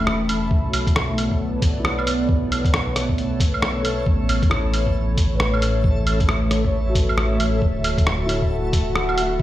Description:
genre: future garage.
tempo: 135 BPM.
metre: 4/4.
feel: swing 62% on 16ths.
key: unclear.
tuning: A4 = 440 Hz.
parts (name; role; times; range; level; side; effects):
felt-muted upright piano; accompaniment; 0.0-9.4 s; C#3 to C#5; -29 LUFS; left 1 dB; sidechain pumping, dub echo.
dark analog pad; sustained chords; 0.0-9.4 s; A3 to B5; -25 LUFS; equal; chorus, sidechain pumping.
dark detuned saw bass; bass; 0.0-9.4 s; D1 to B1; -24 LUFS; equal; sidechain pumping.
backwards swelling texture; texture; 0.0-9.4 s; A3 to A4; -32 LUFS; equal; built-in reverb.
lo-fi sampler-style drum kit; drums; 0.1-9.3 s; claves, hi-hat, rim click; -24 LUFS; right 1 dB; none.
electronic kick drum; drums; 0.5-9.4 s; none; -20 LUFS; equal; none.
room: light reverb.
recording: played on a big sound system in a bare room, large studio reverb.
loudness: -18 LUFS.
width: side -14 dB against mid.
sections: 0.0-9.4 A section.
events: none.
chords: 0.0 Em; 0.5 Bmadd9; 4.1 A; 7.6 Dadd9.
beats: 0.07 | 0.51 0.96 1.40 1.85 | 2.29 2.73 3.18 3.62 | 4.07 4.51 4.96 5.40 | 5.85 6.29 6.74 7.18 | 7.62 8.07 8.51 8.96 | 9.40.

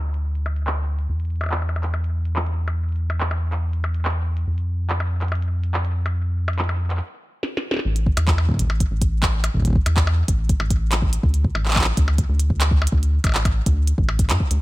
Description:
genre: IDM.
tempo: 142 BPM.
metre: 4/4.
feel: straight.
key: D minor.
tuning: A4 = 439 Hz.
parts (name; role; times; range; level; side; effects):
rubbery square bass; bass; 0.0-14.6 s; A1 to G2; -20 LUFS; equal; none.
glitchy drum kit; drums; 0.1-14.6 s; handclaps, hi-hat, percussion blips, snare drum; -26 LUFS; equal; low-pass filter on hats, low-pass filter on perc, low-pass filter on snare, digital delay.
electronic kick drum; drums; 8.1-14.5 s; none; -21 LUFS; equal; none.
room: digital ambience.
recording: none.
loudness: -19 LUFS.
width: side -18 dB against mid.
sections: 0.0-7.9 A section; 7.9-14.6 B section.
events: stop 7.0-7.9; drum fill 7.4-7.9.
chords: none.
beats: 0.25 0.67 | 1.09 1.51 1.94 2.36 | 2.78 3.21 3.63 4.05 | 4.47 4.89 5.32 5.74 | 6.16 6.59 7.01 7.43 | 7.85 8.28 8.70 9.12 | 9.54 9.97 10.39 10.81 | 11.23 11.66 12.08 12.50 | 12.92 13.35 13.77 14.19.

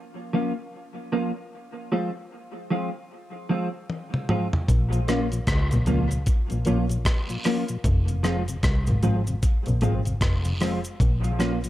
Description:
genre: dub reggae.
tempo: 76 BPM.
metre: 4/4.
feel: swing 60% on 16ths.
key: Bb minor.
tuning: A4 = 445 Hz.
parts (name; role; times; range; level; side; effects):
mellow electric guitar; accompaniment; 0.3-11.6 s; F3 to F4; -28 LUFS; right 1 dB; analog chorus, dub echo.
breakbeat sampler-style drum kit; drums; 3.9-11.7 s; hi-hat, kick drum, rim click, toms; -25 LUFS; equal; none.
clear double bass; bass; 4.7-11.7 s; F1 to Db2; -24 LUFS; equal; none.
cabasa and guiro; percussion; 4.7-11.7 s; none; -41 LUFS; equal; dub echo.
mellow tonewheel organ; accompaniment; 4.9-11.7 s; F2 to F4; -31 LUFS; left 3 dB; slow rotary speaker.
room: light reverb, digital ambience.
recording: dark, warm production.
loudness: -22 LUFS.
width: side -14 dB against mid.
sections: 0.0-11.7 A section.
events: break 0.0-4.7; drum fill 3.9-4.7.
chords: 0.0 Bbm; 1.5 Fm; 4.7 Bbm; 7.8 Fm; 11.0 Bbm.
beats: 0.73 | 1.52 2.31 3.10 3.89 | 4.68 5.47 6.26 7.05 | 7.84 8.63 9.42 10.21 | 11.00.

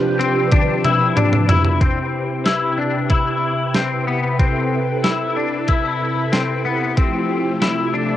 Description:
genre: dream pop.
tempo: 93 BPM.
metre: 4/4.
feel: straight.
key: C major.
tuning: A4 = 440 Hz.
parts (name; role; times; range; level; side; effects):
synth chime; melody; 0.0-1.1 s; G6; -33 LUFS; right 2 dB; ensemble chorus, cassette tape, analog delay.
string machine, violas; sustained chords; 0.0-8.2 s; C3 to B4; -21 LUFS; right 1 dB; phaser, ensemble chorus, cassette tape.
semi-hollow electric guitar; arpeggios; 0.2-8.2 s; B3 to E4; -20 LUFS; left 5 dB; ensemble chorus, cassette tape, analog delay.
crisp 8-bit digital drum machine; drums; 0.2-7.8 s; hi-hat, kick drum, snare drum, toms; -17 LUFS; right 1 dB; cassette tape.
room: moderate spring reverb, RT60 2.4 s.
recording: home recording on cassette.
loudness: -16 LUFS.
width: side -12 dB against mid.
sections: 0.0-1.8 A section; 1.8-8.2 B section.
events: drum fill 0.5-1.8.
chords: 0.0 G7/C; 1.8 Cmaj7; 7.0 Fmaj9/C.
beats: 0.52 1.17 | 1.81 2.46 3.10 3.75 | 4.39 5.04 5.68 6.33 | 6.97 7.62.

